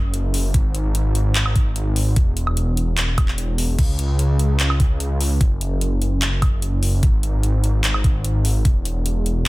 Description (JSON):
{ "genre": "future bass", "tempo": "148 BPM", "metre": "4/4", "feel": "half-time", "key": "unclear", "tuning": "A4 = 439 Hz", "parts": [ { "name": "wide detuned saw bass", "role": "bass", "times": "0.0-9.5 s", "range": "E1 to C#2", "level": "-19 LUFS", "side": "equal", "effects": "chorus, sidechain pumping" }, { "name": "trap drum kit", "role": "drums", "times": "0.1-9.3 s", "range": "crash cymbal, handclaps, hi-hat, woodblock", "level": "-25 LUFS", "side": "equal", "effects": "none" }, { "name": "electronic kick drum", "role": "drums", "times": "0.5-8.7 s", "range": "none", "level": "-17 LUFS", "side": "equal", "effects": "none" } ], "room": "little or no reverb", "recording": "none", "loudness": "-17 LUFS", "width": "side -20 dB against mid", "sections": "0.0-9.5 A section", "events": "none", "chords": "none" }